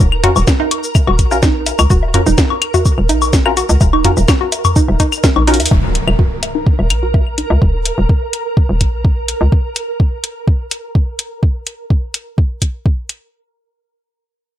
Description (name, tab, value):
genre	minimal techno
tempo	126 BPM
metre	4/4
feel	straight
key	Eb minor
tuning	A4 = 441 Hz
part	hollow knocking FM bass	bass	0.0-9.5 s	Eb1 to Eb2	-16 LUFS	equal	tube saturation, sidechain pumping
part	electronic kick drum	drums	0.0-13.0 s	none	-12 LUFS	equal	none
part	techno drum kit	drums	0.0-13.2 s	cabasa, hi-hat, snare drum	-18 LUFS	left 1 dB	none
part	electronic woodblock, claves and toms	percussion	0.0-7.6 s	none	-18 LUFS	left 4 dB	overdrive, ping-pong delay
part	flickering grainy texture	texture	0.0-11.4 s	Bb4	-25 LUFS	right 2 dB	built-in reverb, sidechain pumping
part	hollow square pluck	riff	0.2-7.4 s	Eb4 to Bb4	-20 LUFS	right 2 dB	chorus, sidechain pumping, tape echo
part	filtered dub chord stab	stabs	0.2-5.6 s	Db4 to Bb4	-19 LUFS	left 2 dB	wide subtle chorus, cassette tape, ping-pong delay
part	impact	sound effects	5.7-7.6 s	none	-22 LUFS	equal	none
room	little or no reverb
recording	none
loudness	-12 LUFS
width	side -12 dB against mid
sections	0.0-5.7 A section; 5.7-13.3 B section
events	drop 0.0-5.7; drum fill 5.5; impact 5.7-7.6; filter sweep on synth arpeggio sound 5.7-7.6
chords	0.0 Ebm; 5.7 Eb5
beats	| 0.00 0.47 0.95 1.43 | 1.90 2.38 2.85 3.33 | 3.81 4.28 4.76 5.24 | 5.71 6.19 6.67 7.14 | 7.62 8.09 8.57 9.05 | 9.52 10.00 10.47 10.95 | 11.43 11.90 12.38 12.86